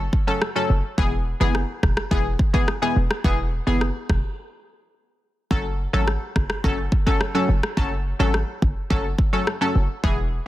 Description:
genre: dancehall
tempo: 106 BPM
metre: 4/4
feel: straight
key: unclear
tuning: A4 = 440 Hz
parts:
  - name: short 808-style bass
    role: bass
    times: 0.0-10.4 s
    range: E1 to G#1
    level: -23 LUFS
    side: equal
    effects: none
  - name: afro-pop drum kit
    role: drums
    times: 0.1-10.2 s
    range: kick drum, rim click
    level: -23 LUFS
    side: equal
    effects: soft clipping on snare
  - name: punchy chord stab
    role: accompaniment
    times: 0.3-10.2 s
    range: E3 to A4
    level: -24 LUFS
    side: left 1 dB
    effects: chorus, sidechain pumping
room: little or no reverb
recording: dense, heavily limited modern master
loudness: -19 LUFS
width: side -15 dB against mid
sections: 0.0-10.5 A section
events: break 4.4-5.5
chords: 0.0 F#m; 1.0 E; 5.5 F#m

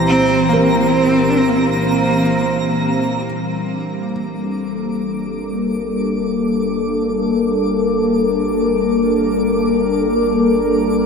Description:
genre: ambient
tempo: free time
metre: none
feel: none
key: unclear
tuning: A4 = 440 Hz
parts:
  - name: airy breathy pad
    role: sustained chords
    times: 0.0-11.1 s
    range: Bb2 to C5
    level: -16 LUFS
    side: left 1 dB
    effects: chorus
  - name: felt-muted upright piano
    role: arpeggios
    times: 0.0-4.1 s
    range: G3 to Bb4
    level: -26 LUFS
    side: equal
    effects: none
  - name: warm sub bass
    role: bass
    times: 0.0-11.1 s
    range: G1 to C2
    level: -38 LUFS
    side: equal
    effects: none
  - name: twinkling granular texture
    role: texture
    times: 0.0-11.1 s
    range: Bb5 to D6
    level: -27 LUFS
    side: right 1 dB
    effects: built-in reverb
  - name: clear cello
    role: melody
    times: 0.1-2.9 s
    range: Bb3 to D4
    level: -20 LUFS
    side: equal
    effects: ping-pong delay
room: wet huge ambient reverb, RT60 8.0 s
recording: none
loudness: -15 LUFS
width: side -5 dB against mid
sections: 0.0-3.2 A section; 3.2-11.1 B section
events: fade-in on sub bass 3.2-11.1; fade-in on synth texture 3.2-11.1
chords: 0.0 C7; 3.2 Gmadd9

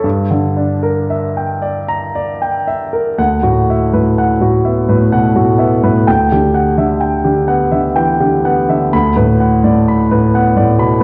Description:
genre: classical, impressionist solo piano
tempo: 56-66 BPM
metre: 3/4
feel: rubato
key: D major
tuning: A4 = 439 Hz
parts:
  - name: warm concert grand piano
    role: solo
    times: 0.0-11.0 s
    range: D2 to B5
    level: -13 LUFS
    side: equal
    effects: none
room: wet recital hall reverb, RT60 1.4 s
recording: worn, warbling old tape, cassette tape, warbly pitch drift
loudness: -13 LUFS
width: mono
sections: 0.0-3.2 A section; 3.2-11.0 B section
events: none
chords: 0.0 Gm6; 3.2 D69; 6.1 Em9/D; 8.9 D6

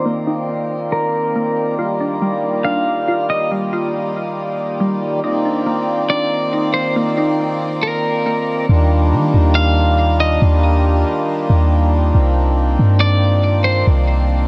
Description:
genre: hip hop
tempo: 139 BPM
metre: 4/4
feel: half-time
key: Eb major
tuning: A4 = 438 Hz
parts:
  - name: electric guitar at the edge of break-up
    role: melody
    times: 0.0-3.5, 6.1-10.4, 13.0-13.9 s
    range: Bb4 to F5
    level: -24 LUFS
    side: equal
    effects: low-pass filter, digital delay
  - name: hand-pumped harmonium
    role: sustained chords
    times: 0.0-14.5 s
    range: Eb3 to D5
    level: -22 LUFS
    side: equal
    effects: low-pass filter
  - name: glassy wavetable pluck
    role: arpeggios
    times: 0.0-8.7 s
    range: G3 to F4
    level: -26 LUFS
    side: equal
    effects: chorus, low-pass filter, digital delay
  - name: clean 808-style bass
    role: bass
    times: 8.7-14.5 s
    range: C2 to Eb3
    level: -16 LUFS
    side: equal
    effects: none
room: moderate shimmer reverb, RT60 6.2 s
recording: none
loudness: -17 LUFS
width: mono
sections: 0.0-8.7 A section; 8.7-14.5 B section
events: filter sweep 0.0-8.7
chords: 0.0 Cm11; 1.8 Ebmaj9; 5.2 Cm11; 8.7 Ebmaj9; 12.1 Cm11

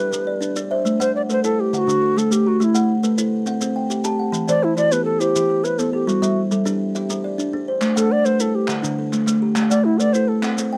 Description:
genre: southern african traditional, mbira-style interlocking cycle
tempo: 138 BPM (dotted quarters)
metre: 12/8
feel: straight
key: A dorian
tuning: A4 = 440 Hz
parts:
  - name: low Native American-style wooden flute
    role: melody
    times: 0.0-10.4 s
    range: E4 to D5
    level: -22 LUFS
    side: equal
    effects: none
  - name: buzzing kalimba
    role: arpeggios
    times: 0.0-10.8 s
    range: D3 to A5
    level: -23 LUFS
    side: equal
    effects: none
  - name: kalimba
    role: arpeggios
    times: 0.0-10.8 s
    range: D3 to F#5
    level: -27 LUFS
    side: equal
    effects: none
  - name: maracas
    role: percussion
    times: 0.1-10.7 s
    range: none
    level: -32 LUFS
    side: equal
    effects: none
  - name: group handclap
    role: percussion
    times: 7.8-10.6 s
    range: none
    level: -32 LUFS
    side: equal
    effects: none
room: light reverb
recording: dry, close 1970s-style studio recording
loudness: -20 LUFS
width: mono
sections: 0.9-10.8 A section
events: none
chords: 0.0 G; 0.9 Am; 1.7 D; 2.6 Am; 3.5 C5; 4.3 Em; 6.1 G; 7.8 Am; 8.7 D; 9.6 Am

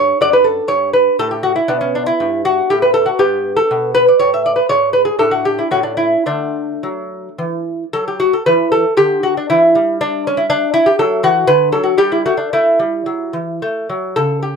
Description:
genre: classical, baroque-style dance for lute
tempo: 105-124 BPM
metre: 3/4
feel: rubato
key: D major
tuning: A4 = 444 Hz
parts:
  - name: lute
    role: solo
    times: 0.0-14.6 s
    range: F#2 to E5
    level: -12 LUFS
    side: equal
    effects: none
room: small room ambience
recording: dry, close 1970s-style studio recording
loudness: -12 LUFS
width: side -5 dB against mid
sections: 0.0-7.9 A section; 7.9-14.6 B section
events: none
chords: 0.2 D/F#; 1.7 Gmaj13; 4.7 G#dim; 5.2 D5/A; 5.7 A; 6.3 D; 9.5 Em; 11.0 D; 12.0 Em11/G; 12.5 A5

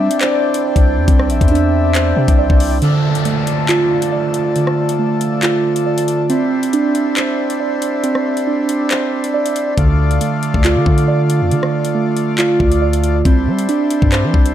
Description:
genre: hip hop, drill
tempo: 138 BPM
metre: 4/4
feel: half-time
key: D minor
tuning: A4 = 441 Hz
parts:
  - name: breathy flute-like synth lead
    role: second line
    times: 0.0-2.8 s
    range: D5 to E5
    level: -22 LUFS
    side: left 8 dB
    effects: chorus, ping-pong delay
  - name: accordion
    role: sustained chords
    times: 0.0-14.5 s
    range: E3 to D5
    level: -23 LUFS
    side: left 6 dB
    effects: none
  - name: muted felt-like synth keys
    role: arpeggios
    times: 0.0-14.5 s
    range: D3 to D5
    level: -16 LUFS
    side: right 4 dB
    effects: chorus, low-pass filter, ping-pong delay
  - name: long sustained 808-style bass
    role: bass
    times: 0.0-2.8, 9.8-14.5 s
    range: Bb1 to G3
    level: -16 LUFS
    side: left 1 dB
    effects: none
  - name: drill drum kit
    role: drums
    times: 0.1-14.5 s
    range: handclaps, hi-hat, kick drum, rim click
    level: -17 LUFS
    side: left 1 dB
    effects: none
  - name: downlifter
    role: sound effects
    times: 2.8-6.3 s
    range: none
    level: -28 LUFS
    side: left 2 dB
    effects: none
room: light reverb, digital ambience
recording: none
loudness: -13 LUFS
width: side -11 dB against mid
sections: 0.0-2.8 A section; 2.8-14.5 B section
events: break 2.8-9.8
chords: 0.0 Cadd9; 2.8 Dm; 6.3 Cadd9; 9.8 Dm; 13.3 Cadd9

